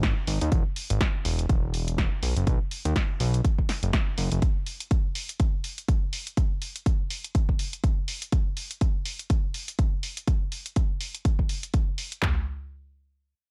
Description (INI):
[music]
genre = piano house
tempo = 123 BPM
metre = 4/4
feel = swing 57% on 16ths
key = unclear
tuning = A4 = 437 Hz
[part]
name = fat analog bass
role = bass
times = 0.0-4.4 s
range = E1 to D#2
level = -28 LUFS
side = equal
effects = sidechain pumping
[part]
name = house drum kit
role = drums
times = 0.0-12.4 s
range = handclaps, kick drum, toms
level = -27 LUFS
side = equal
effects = small room ambience
[part]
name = punchy analog drum machine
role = drums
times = 0.0-12.2 s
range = hi-hat, snare drum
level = -35 LUFS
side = equal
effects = small room ambience
[sound]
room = little or no reverb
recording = none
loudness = -27 LUFS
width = mono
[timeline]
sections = 0.0-12.2 A section; 12.2-13.5 B section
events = none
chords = none